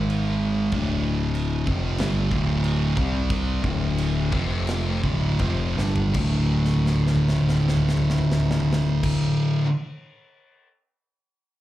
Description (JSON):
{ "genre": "stoner and doom metal", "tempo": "78-96 BPM", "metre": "4/4", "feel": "straight", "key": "D phrygian", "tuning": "A4 = 439 Hz", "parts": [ { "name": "thick fuzz guitar", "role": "riff", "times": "0.0-9.7 s", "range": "D2 to C4", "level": "-22 LUFS", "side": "equal", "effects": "distortion" }, { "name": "growling picked electric bass", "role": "bass", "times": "0.0-9.1 s", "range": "D1 to C2", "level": "-26 LUFS", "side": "equal", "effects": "overdrive" }, { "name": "big rock drum kit", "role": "drums", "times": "0.1-10.7 s", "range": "crash cymbal, kick drum, snare drum, toms", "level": "-29 LUFS", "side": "equal", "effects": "none" } ], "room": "light reverb", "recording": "live gig heard through the venue's PA, club reverb", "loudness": "-20 LUFS", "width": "side -14 dB against mid", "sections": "0.0-6.1 A section; 6.1-9.2 B section", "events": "slowing down 0.7-6.1; drum fill 5.8-6.1, 6.5-9.0", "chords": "0.0 G#5; 0.7 Dm; 3.0 C5; 3.6 D5; 4.3 F5; 5.0 Dm; 6.1 D5" }